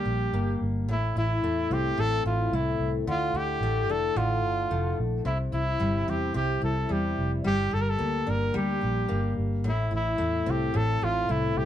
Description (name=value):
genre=pop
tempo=110 BPM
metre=4/4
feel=straight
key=unclear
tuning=A4 = 440 Hz
part: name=clear trumpet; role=melody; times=0.0-11.7 s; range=E4 to Bb4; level=-29 LUFS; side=right 1 dB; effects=none
part: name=picked steel-string acoustic guitar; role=accompaniment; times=0.0-11.7 s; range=A2 to G4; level=-29 LUFS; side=left 3 dB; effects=none
part: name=vintage muted fingered electric bass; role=bass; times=0.1-11.7 s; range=F1 to E2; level=-29 LUFS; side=right 1 dB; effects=none
room=moderate studio ambience, RT60 0.5 s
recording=band playing live in one room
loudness=-24 LUFS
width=side -11 dB against mid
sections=0.0-11.7 A section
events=none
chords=0.0 Gm; 0.9 Am; 3.1 Dmadd9; 5.3 C; 7.4 Gm; 9.6 Am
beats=0.33 | 0.88 1.43 1.97 2.52 | 3.07 3.62 4.16 4.71 | 5.26 5.80 6.35 6.90 | 7.45 7.99 8.54 9.09 | 9.64 10.19 10.73 11.28